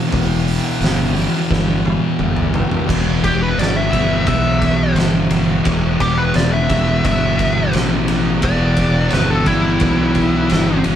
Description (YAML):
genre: stoner and doom metal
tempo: 87 BPM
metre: 4/4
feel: straight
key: E minor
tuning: A4 = 440 Hz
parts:
  - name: thick fuzz guitar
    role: riff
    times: 0.0-11.0 s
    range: E2 to E3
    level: -18 LUFS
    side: equal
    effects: distortion
  - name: modern bright fingered electric bass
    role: bass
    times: 0.1-11.0 s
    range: E1 to B1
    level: -20 LUFS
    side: equal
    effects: overdrive
  - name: oversized low-tuned drum kit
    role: drums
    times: 0.1-11.0 s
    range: crash cymbal, hi-hat, kick drum, ride cymbal, snare drum, toms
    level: -20 LUFS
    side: equal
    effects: none
  - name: fuzz lead guitar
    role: melody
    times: 3.2-10.8 s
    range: E4 to E5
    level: -20 LUFS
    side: left 1 dB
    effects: wah, distortion
room: light reverb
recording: band playing live in one room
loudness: -14 LUFS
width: side -10 dB against mid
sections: 0.0-2.9 A section; 2.9-11.0 B section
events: drum fill 1.5-2.9; lead electric guitar solo 2.9-11.0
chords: 0.0 Em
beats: | 0.11 0.81 1.50 2.19 | 2.88 3.57 4.26 4.96 | 5.65 6.34 7.04 7.73 | 8.42 9.11 9.81 10.50